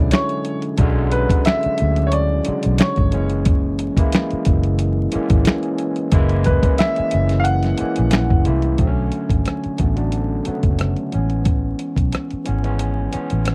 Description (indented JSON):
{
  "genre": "R&B, neo-soul",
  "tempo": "90 BPM",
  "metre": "4/4",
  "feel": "swing 54% on 16ths",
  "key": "B dorian",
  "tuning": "A4 = 440 Hz",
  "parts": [
    { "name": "clear grand piano", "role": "melody", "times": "0.0-8.4 s", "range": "B4 to F#5", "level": "-25 LUFS", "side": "equal", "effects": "none" },
    { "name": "overdriven tine electric piano", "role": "accompaniment", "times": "0.0-13.5 s", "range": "C#3 to E4", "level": "-25 LUFS", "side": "equal", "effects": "lush chorus" },
    { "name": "vintage muted fingered electric bass", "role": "bass", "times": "0.0-13.5 s", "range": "F#1 to D2", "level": "-22 LUFS", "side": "equal", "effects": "none" },
    { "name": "dusty soul sampler-style drum kit", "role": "drums", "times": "0.1-13.5 s", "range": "finger snaps, hi-hat, kick drum, rim click, snare drum", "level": "-20 LUFS", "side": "equal", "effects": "none" }
  ],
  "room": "little or no reverb",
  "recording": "dry, close 1970s-style studio recording, vinyl crackle",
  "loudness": "-19 LUFS",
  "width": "mono",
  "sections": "0.0-8.8 A section; 8.8-13.5 B section",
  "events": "none",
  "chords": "0.0 E13/B; 3.1 F#7; 8.8 Bm9; 11.1 Amaj9",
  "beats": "0.12 | 0.79 1.46 2.12 2.79 | 3.46 4.12 4.79 5.46 | 6.12 6.79 7.46 8.12 | 8.79 9.46 10.12 10.79 | 11.46 12.12 12.79 13.46"
}